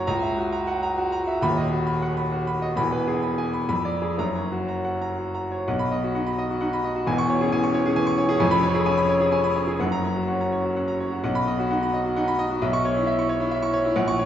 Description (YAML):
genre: classical, virtuoso piano study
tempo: 119-137 BPM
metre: 3/4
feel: rubato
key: B major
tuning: A4 = 440 Hz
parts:
  - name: clear baby grand piano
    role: solo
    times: 0.0-14.3 s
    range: D#1 to C#6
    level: -21 LUFS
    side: equal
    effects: none
room: wet recital hall reverb, RT60 1.5 s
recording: heard from further back in the room, nothing above 8.0 kHz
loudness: -21 LUFS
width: side -10 dB against mid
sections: 0.0-5.7 A section; 5.7-14.3 B section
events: none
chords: 0.1 F#7/C#; 1.4 B/D#; 2.8 E; 3.7 Fdim7; 4.2 F#; 5.7 B; 7.1 C#m/E; 8.4 C#7/E#; 9.8 F#; 11.2 B; 12.6 C#m7/B